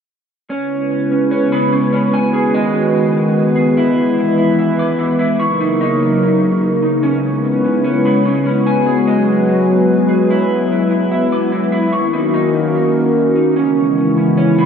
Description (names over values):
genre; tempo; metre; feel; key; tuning
hip hop; 147 BPM; 4/4; half-time; C# dorian; A4 = 442 Hz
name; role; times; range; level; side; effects
hollow soft pad; sustained chords; 0.8-14.7 s; C#3 to B4; -13 LUFS; equal; chorus
electric guitar at the edge of break-up; arpeggios; 0.5-14.7 s; C#4 to D6; -18 LUFS; right 1 dB; wide subtle chorus, low-pass filter, ping-pong delay
room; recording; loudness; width
wet huge ambient reverb, RT60 7.2 s; dreamy mix soaked in reverb; -12 LUFS; side -7 dB against mid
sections
0.5-13.6 A section; 13.6-14.7 B section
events
none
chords
0.5 C#m7; 2.1 B6; 3.8 E; 5.4 D#m7; 7.0 C#m7; 8.7 B6; 10.3 E; 11.9 D#m7; 13.6 C#m7